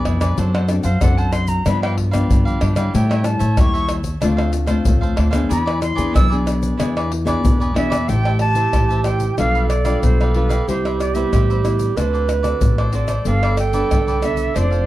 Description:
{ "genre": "samba and choro", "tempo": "93 BPM", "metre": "4/4", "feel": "straight", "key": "A minor", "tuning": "A4 = 436 Hz", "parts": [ { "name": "cavaquinho", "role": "accompaniment", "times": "0.0-14.9 s", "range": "D4 to A5", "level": "-28 LUFS", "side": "right 1 dB", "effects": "none" }, { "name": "nylon-string guitar", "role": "accompaniment", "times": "0.0-14.9 s", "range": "G2 to C5", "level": "-23 LUFS", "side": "left 3 dB", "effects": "none" }, { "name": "upright bass", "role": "bass", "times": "0.1-14.9 s", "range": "F1 to A2", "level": "-19 LUFS", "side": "equal", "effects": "none" }, { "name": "pandeiro, tamborim, tube shaker and surdo", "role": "percussion", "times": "0.1-14.9 s", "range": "none", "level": "-20 LUFS", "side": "left 1 dB", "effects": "none" }, { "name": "jazz flute", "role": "melody", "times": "0.8-14.9 s", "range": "B4 to E6", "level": "-24 LUFS", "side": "right 1 dB", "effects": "none" }, { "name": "warm clarinet", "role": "second line", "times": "8.1-14.9 s", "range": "G4 to C5", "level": "-23 LUFS", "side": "right 8 dB", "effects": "none" } ], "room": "studio reverb", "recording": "dry, close 1970s-style studio recording", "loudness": "-15 LUFS", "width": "side -15 dB against mid", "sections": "0.0-8.1 A section; 8.1-14.9 B section", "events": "flute solo 0.0-8.1", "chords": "0.4 D7/F#; 1.7 G7; 2.9 A7; 4.2 Dm7; 5.5 E7; 8.1 Am7; 9.4 G7/B; 10.7 Cmaj7; 12.0 D7; 13.3 Gadd9", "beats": "| 0.38 1.02 1.66 2.30 | 2.94 3.59 4.23 4.87 | 5.51 6.16 6.80 7.45 | 8.09 8.74 9.38 10.03 | 10.68 11.32 11.97 12.62 | 13.26 13.91 14.56" }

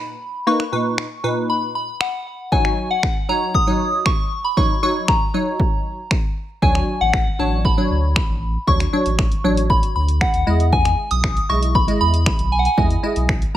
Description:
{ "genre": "dance-pop", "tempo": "117 BPM", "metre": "4/4", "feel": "straight", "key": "unclear", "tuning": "A4 = 439 Hz", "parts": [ { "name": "soft synth bell", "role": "melody", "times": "0.0-13.6 s", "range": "F#5 to D#6", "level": "-22 LUFS", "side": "equal", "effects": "chorus, phaser, digital delay" }, { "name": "wavetable chord stab", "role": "accompaniment", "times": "0.0-13.6 s", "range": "A#2 to D#5", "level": "-22 LUFS", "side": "equal", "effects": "sidechain pumping" }, { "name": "punchy analog drum machine", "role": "drums", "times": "0.6-13.5 s", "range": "finger snaps, hi-hat, kick drum", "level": "-20 LUFS", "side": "equal", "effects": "none" }, { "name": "saturated sub bass", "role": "bass", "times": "6.6-13.6 s", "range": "A1 to E2", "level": "-20 LUFS", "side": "equal", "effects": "sidechain pumping" } ], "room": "little or no reverb", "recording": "none", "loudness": "-16 LUFS", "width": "side -12 dB against mid", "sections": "0.0-13.6 A section", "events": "none", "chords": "0.0 Bmaj7; 2.5 D#m7; 6.6 Dmaj7; 10.5 Emaj7", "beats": "| 0.47 0.98 1.50 2.01 | 2.52 3.03 3.55 4.06 | 4.57 5.08 5.60 6.11 | 6.62 7.14 7.65 8.16 | 8.68 9.19 9.70 10.21 | 10.73 11.24 11.75 12.27 | 12.78 13.29" }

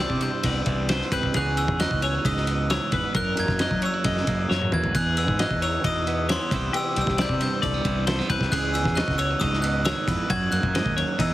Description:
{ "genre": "math rock and midwest emo", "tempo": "134 BPM", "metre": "4/4", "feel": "straight", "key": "unclear", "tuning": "A4 = 440 Hz", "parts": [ { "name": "glockenspiel with brass mallets", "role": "melody", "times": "0.0-11.3 s", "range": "C6 to G#6", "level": "-28 LUFS", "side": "equal", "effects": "none" }, { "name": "twelve-string electric guitar", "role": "accompaniment", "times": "0.0-11.3 s", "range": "E2 to A#4", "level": "-30 LUFS", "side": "right 6 dB", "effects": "none" }, { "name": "twelve-string electric guitar", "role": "arpeggios", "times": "0.0-11.3 s", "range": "D#4 to D#5", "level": "-29 LUFS", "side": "left 3 dB", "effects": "none" }, { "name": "fuzz fingered electric bass", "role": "bass", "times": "0.0-11.3 s", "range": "C2 to F#3", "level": "-27 LUFS", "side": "equal", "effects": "overdrive" }, { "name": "loose indie drum kit", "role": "drums", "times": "0.1-11.3 s", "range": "kick drum, ride cymbal, snare drum, toms", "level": "-27 LUFS", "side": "equal", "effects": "none" } ], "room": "little or no reverb", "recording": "heavily compressed radio sound, multiband compression", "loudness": "-21 LUFS", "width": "side -14 dB against mid", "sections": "0.0-11.3 A section", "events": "drum fill 4.5-5.0", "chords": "0.0 Cmaj7; 1.4 C#m11; 3.2 F#7; 5.0 Emaj7; 6.5 Cmaj7; 8.5 C#m11; 10.3 F#", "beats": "0.00 0.45 0.90 | 1.35 1.80 2.25 2.71 | 3.15 3.60 4.05 4.50 | 4.95 5.40 5.85 6.29 | 6.74 7.19 7.63 8.08 | 8.53 8.97 9.41 9.86 | 10.30 10.75 11.20" }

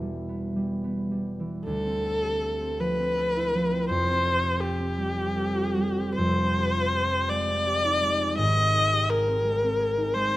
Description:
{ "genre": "classical, impressionist duo for viola and harp", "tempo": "80 BPM", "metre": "3/4", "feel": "uneven beats, rubato", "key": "D dorian", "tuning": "A4 = 442 Hz", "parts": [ { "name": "concert harp", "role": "accompaniment", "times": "0.0-10.4 s", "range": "E1 to G5", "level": "-27 LUFS", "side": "right 1 dB", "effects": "none" }, { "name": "warm viola", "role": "melody", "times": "1.7-10.4 s", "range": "G4 to D#5", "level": "-25 LUFS", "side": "left 1 dB", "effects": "none" } ], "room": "moderate recital hall reverb, RT60 1.5 s", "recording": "close, detailed microphones", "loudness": "-23 LUFS", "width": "side -16 dB against mid", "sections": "0.0-1.7 A section; 1.7-10.4 B section", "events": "none", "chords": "0.0 Emadd9; 1.7 Dm9; 3.9 Fadd9; 6.2 Fm9; 8.4 G#add9", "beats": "0.01 0.84 | 1.66 2.42 3.17 | 3.90 4.61 5.35 | 6.17 6.92 7.65 | 8.38 9.09 9.79" }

